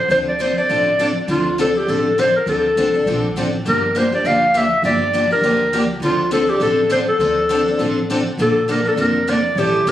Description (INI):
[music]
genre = acoustic string swing (jazz manouche)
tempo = 203 BPM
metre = 4/4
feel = swing 58% on 8ths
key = D minor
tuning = A4 = 440 Hz
[part]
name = breathy clarinet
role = melody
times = 0.0-9.9 s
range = F4 to F5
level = -16 LUFS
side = left 1 dB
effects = none
[part]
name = picked steel-string acoustic guitar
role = accompaniment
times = 0.1-9.9 s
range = D3 to A4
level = -22 LUFS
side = left 3 dB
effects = none
[part]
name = picked steel-string acoustic guitar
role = accompaniment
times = 0.1-9.9 s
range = D3 to A4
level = -26 LUFS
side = right 5 dB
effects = none
[part]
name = upright bass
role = bass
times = 0.1-9.9 s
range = F1 to D2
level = -26 LUFS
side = right 1 dB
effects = none
[sound]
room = light reverb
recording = recorded on a phone in the room, studio reverb, compression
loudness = -15 LUFS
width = side -12 dB against mid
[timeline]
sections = 0.0-9.9 A section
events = none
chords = 0.0 Dm7; 3.6 Gm7; 6.0 Dm7; 8.4 Bbmaj7